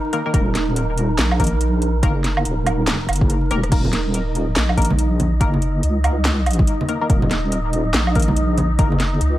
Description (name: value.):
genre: deep dubstep.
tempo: 142 BPM.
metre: 4/4.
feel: swing 61% on 16ths, half-time.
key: Eb minor.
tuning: A4 = 440 Hz.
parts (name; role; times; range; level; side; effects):
dark analog pad; sustained chords; 0.0-9.4 s; Eb4; -28 LUFS; right 2 dB; chorus.
wind-like tuned noise texture; texture; 0.0-9.4 s; Bb4 to Eb5; -29 LUFS; equal; built-in reverb.
filtered dub chord stab; stabs; 0.1-8.9 s; Eb3 to Bb4; -26 LUFS; left 3 dB; analog chorus, dub echo.
garage drum kit; drums; 0.1-9.3 s; crash cymbal, handclaps, hi-hat, rim click, snare drum, woodblock; -23 LUFS; right 1 dB; none.
deep soft wobble bass; bass; 0.3-9.4 s; Eb1 to Db2; -19 LUFS; equal; chorus.
electronic kick drum; drums; 0.3-8.9 s; none; -18 LUFS; equal; overdrive.
congas; percussion; 3.8-9.0 s; none; -25 LUFS; right 1 dB; none.
room: little or no reverb.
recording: vinyl crackle.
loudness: -16 LUFS.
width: side -14 dB against mid.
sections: 0.0-9.4 A section.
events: drum fill 3.5.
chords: 0.0 Eb5.